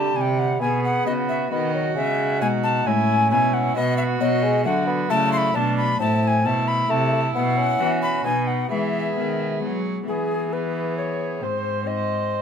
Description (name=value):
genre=classical, renaissance-style consort dance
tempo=134 BPM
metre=3/4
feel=straight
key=E major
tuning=A4 = 440 Hz
part: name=alto recorder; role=melody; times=0.0-12.4 s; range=G#4 to C6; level=-24 LUFS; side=left 3 dB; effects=none
part: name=rich viola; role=second line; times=0.0-12.4 s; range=D4 to B#4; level=-29 LUFS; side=right 7 dB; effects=none
part: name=Celtic harp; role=accompaniment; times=0.0-12.4 s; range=G#2 to E5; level=-28 LUFS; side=left 7 dB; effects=none
part: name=mellow bassoon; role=accompaniment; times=0.0-12.4 s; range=F#3 to D#4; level=-27 LUFS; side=right 1 dB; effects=none
part: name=rich cello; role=bass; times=0.0-12.4 s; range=G#2 to F#3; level=-26 LUFS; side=right 2 dB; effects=none
room=light reverb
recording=minimal, uncompressed stereo recording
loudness=-19 LUFS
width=side -7 dB against mid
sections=0.0-10.1 A section; 10.1-12.4 B section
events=none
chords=0.0 C; 0.6 B; 2.0 C#m; 3.3 Bsus4; 3.8 B; 4.7 D; 6.0 Am; 7.3 Bsus4; 8.2 B; 8.7 E; 11.4 G#